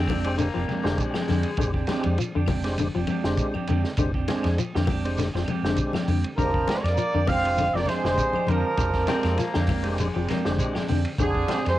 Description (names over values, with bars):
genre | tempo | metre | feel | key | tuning
afrobeat | 100 BPM | 4/4 | swing 54% on 16ths | F dorian | A4 = 440 Hz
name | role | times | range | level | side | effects
warm horn section | melody | 0.0-0.1, 6.4-11.8 s | Ab4 to F5 | -26 LUFS | right 1 dB | cassette tape
raspy baritone saxophone | second line | 0.0-2.2, 9.1-11.0 s | Ab3 to C4 | -33 LUFS | left 6 dB | cassette tape
trombone with plunger mute | second line | 0.0-0.1, 6.4-11.8 s | D3 to C4 | -31 LUFS | right 6 dB | cassette tape
electric guitar at the edge of break-up | arpeggios | 0.0-11.5 s | D3 to F3 | -30 LUFS | left 5 dB | tremolo, cassette tape
semi-hollow electric guitar | stabs | 0.0-11.7 s | Ab3 to G4 | -32 LUFS | right 6 dB | cassette tape
hollow-body short-scale fingered electric bass | bass | 0.0-11.8 s | F1 to F2 | -27 LUFS | equal | none
vintage drum kit | drums | 0.1-11.8 s | hi-hat, kick drum, ride cymbal, snare drum | -30 LUFS | equal | cassette tape
claves | percussion | 0.1-11.8 s | none | -43 LUFS | left 7 dB | none
congas | percussion | 0.1-11.7 s | none | -31 LUFS | left 4 dB | none
shekere | percussion | 0.1-11.7 s | none | -32 LUFS | right 3 dB | none
percussive tonewheel organ | accompaniment | 0.2-11.8 s | Ab3 to Bb4 | -31 LUFS | equal | slow rotary speaker, overdrive, chorus vibrato, cassette tape
room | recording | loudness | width
little or no reverb | home recording on cassette | -22 LUFS | side -14 dB against mid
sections
0.0-11.8 A section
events
none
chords
0.0 Fm69